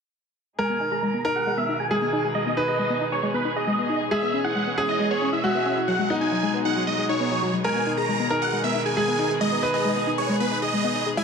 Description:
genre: trance.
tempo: 136 BPM.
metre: 4/4.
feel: straight.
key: G# minor.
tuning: A4 = 440 Hz.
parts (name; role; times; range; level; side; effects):
big supersaw lead; melody; 0.6-11.2 s; B4 to A#5; -27 LUFS; right 2 dB; phaser, low-pass filter, tape echo.
bright grand piano; second line; 0.6-11.2 s; D#4 to B4; -26 LUFS; equal; tape echo.
warm studio string section; sustained chords; 0.6-11.2 s; B2 to G#4; -31 LUFS; equal; low-pass filter.
analog pluck; arpeggios; 0.6-11.2 s; F#3 to G#4; -27 LUFS; left 2 dB; chorus, tape echo.
room: moderate huge ambient reverb, RT60 8.4 s.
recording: none.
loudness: -21 LUFS.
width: side -6 dB against mid.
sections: 0.6-11.2 A section.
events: filter sweep on supersaw synth 0.6-11.2; filter sweep on synth pluck 0.6-11.2; filter sweep on string section 0.6-11.2.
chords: 0.6 G#m; 4.1 C#m7; 5.9 B6; 7.6 G#m.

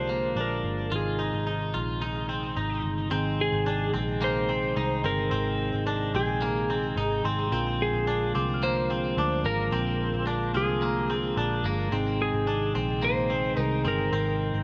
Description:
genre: dream pop.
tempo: 109 BPM.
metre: 4/4.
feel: straight.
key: Ab lydian.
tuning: A4 = 440 Hz.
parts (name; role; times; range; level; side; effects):
clean lap steel guitar; melody; 0.0-14.6 s; Ab4 to C5; -33 LUFS; equal; digital delay.
mellow tonewheel organ; sustained chords; 0.0-14.6 s; C3 to Bb4; -34 LUFS; equal; slow rotary speaker.
twangy electric guitar; arpeggios; 0.0-14.6 s; Bb3 to F4; -34 LUFS; equal; lush chorus, digital delay.
vintage muted picked electric bass; bass; 0.0-14.6 s; G1 to D2; -33 LUFS; equal; none.
small celesta; texture; 3.1-14.6 s; G5 to F6; -41 LUFS; equal; digital delay.
room: moderate huge ambient reverb, RT60 4.8 s.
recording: none.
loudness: -27 LUFS.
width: mono.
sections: 0.0-3.1 A section; 3.1-14.6 B section.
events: none.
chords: 0.0 Bb7; 0.9 Abmaj7; 3.1 Ab; 7.5 Bb7; 11.9 Ab.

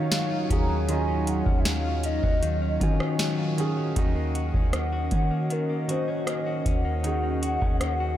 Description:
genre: contemporary R&B.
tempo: 78 BPM.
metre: 4/4.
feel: straight.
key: Eb minor.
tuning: A4 = 440 Hz.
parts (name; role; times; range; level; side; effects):
hollow clarinet-like synth lead; melody; 0.0-8.2 s; Bb4 to Bb5; -32 LUFS; equal; chorus, diffuse ambient delay.
warm grand piano; accompaniment; 0.0-8.2 s; Eb3 to Ab5; -32 LUFS; right 4 dB; none.
warm analog pad; sustained chords; 0.0-8.2 s; Gb3 to Eb5; -33 LUFS; equal; chorus, sidechain pumping.
direct-recorded clean electric guitar; arpeggios; 0.0-8.2 s; Eb3 to Bb4; -34 LUFS; left 6 dB; diffuse ambient delay.
soft 808-style bass; bass; 0.0-8.2 s; Eb2 to Eb3; -28 LUFS; equal; none.
booming analog drum machine; drums; 0.1-8.0 s; hi-hat, kick drum, rim click, snare drum; -27 LUFS; equal; none.
room: moderate huge ambient reverb, RT60 5.2 s.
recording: dreamy mix soaked in reverb.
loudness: -23 LUFS.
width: side -12 dB against mid.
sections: 0.0-4.0 A section; 4.0-8.2 B section.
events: none.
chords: 0.0 Ebm9; 4.0 Ebm7.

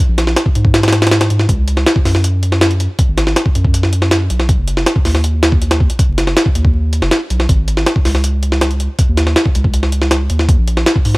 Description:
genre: drum and bass, jungle.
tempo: 160 BPM.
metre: 4/4.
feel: straight.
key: G# minor.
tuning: A4 = 437 Hz.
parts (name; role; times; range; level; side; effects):
soft dub sub bass; bass; 0.1-11.2 s; F#1 to G#2; -14 LUFS; equal; none.
jungle sampler-style drum kit; drums; 0.2-11.2 s; hi-hat, kick drum, snare drum; -13 LUFS; equal; none.
room: little or no reverb.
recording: vinyl crackle.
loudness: -11 LUFS.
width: side -22 dB against mid.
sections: 0.0-11.2 A section.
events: none.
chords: none.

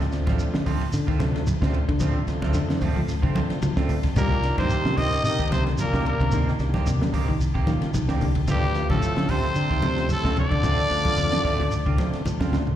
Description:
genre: afrobeat.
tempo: 111 BPM.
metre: 4/4.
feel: swing 54% on 16ths.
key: unclear.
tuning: A4 = 439 Hz.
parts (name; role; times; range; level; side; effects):
electric guitar at the edge of break-up; arpeggios; 0.0-12.8 s; C3 to G3; -29 LUFS; left 5 dB; none.
electric guitar at the edge of break-up; stabs; 0.0-12.6 s; Eb3 to G4; -34 LUFS; right 7 dB; lush chorus, slapback echo.
fingered electric bass; bass; 0.0-12.6 s; A1 to D3; -26 LUFS; equal; none.
compact cocktail drum kit; drums; 0.0-12.8 s; hi-hat, kick drum, ride cymbal, snare drum, toms; -27 LUFS; equal; none.
overdriven combo organ; accompaniment; 0.1-12.6 s; Eb3 to F4; -33 LUFS; right 2 dB; slapback echo.
shekere; percussion; 0.1-12.7 s; none; -30 LUFS; right 1 dB; none.
congas; percussion; 0.3-12.8 s; none; -31 LUFS; right 2 dB; none.
growling trumpet; melody; 4.2-12.2 s; G4 to Eb5; -27 LUFS; left 1 dB; slapback echo.
growling tenor saxophone; second line; 4.2-12.2 s; G3 to Eb4; -37 LUFS; right 3 dB; none.
mellow trombone section; second line; 4.2-12.2 s; G2 to Eb3; -31 LUFS; left 1 dB; slapback echo.
room: little or no reverb.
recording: live gig heard through the venue's PA, recital hall reverb.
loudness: -21 LUFS.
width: side -11 dB against mid.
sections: 0.0-12.8 A section.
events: drum fill 12.3-12.8.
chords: 0.0 Dm7; 4.2 Cm7; 8.5 Dm7.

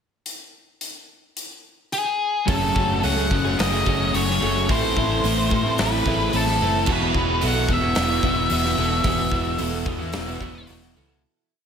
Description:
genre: rock, shoegaze and dream pop.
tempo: 110 BPM.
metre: 4/4.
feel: straight.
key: E major.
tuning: A4 = 440 Hz.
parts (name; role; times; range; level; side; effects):
big rock drum kit; drums; 0.3-10.9 s; crash cymbal, hi-hat, kick drum, snare drum; -26 LUFS; equal; none.
octave-fuzz lead guitar; melody; 1.9-10.7 s; G#4 to F#5; -24 LUFS; left 1 dB; distortion, slapback echo.
picked twelve-string acoustic guitar; arpeggios; 2.5-11.2 s; F#4 to G#5; -33 LUFS; right 8 dB; wide subtle chorus, slapback echo.
direct-recorded clean electric guitar; riff; 2.5-11.2 s; E2 to G#4; -29 LUFS; right 10 dB; reverse reverb.
overdriven electric guitar; riff; 2.5-11.2 s; E2 to F#4; -27 LUFS; left 9 dB; analog chorus.
overdriven electric guitar; riff; 2.5-11.2 s; E2 to A3; -28 LUFS; right 1 dB; spring reverb.
vintage muted fingered electric bass; bass; 2.5-11.2 s; E1 to A2; -27 LUFS; equal; none.
room: light reverb, small room reverb.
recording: none.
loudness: -19 LUFS.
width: side -7 dB against mid.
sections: 0.3-2.5 pickup bar; 2.5-11.2 A section.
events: fade-out 9.1-11.2.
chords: 0.3 N.C.; 2.5 F#madd9; 4.7 Amadd9; 6.9 Esus2.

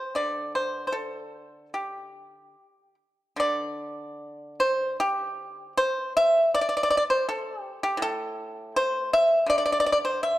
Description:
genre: chinese traditional, Chinese solo plucked strings.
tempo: 70-83 BPM.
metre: 4/4.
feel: rubato.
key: unclear.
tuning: A4 = 441 Hz.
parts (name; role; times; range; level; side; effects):
pipa; solo; 0.0-10.4 s; A2 to E5; -24 LUFS; equal; none.
room: wet recital hall reverb, RT60 1.7 s.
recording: dark, warm production.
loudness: -23 LUFS.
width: side -15 dB against mid.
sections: 0.0-3.4 A section; 3.4-10.4 B section.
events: none.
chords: none.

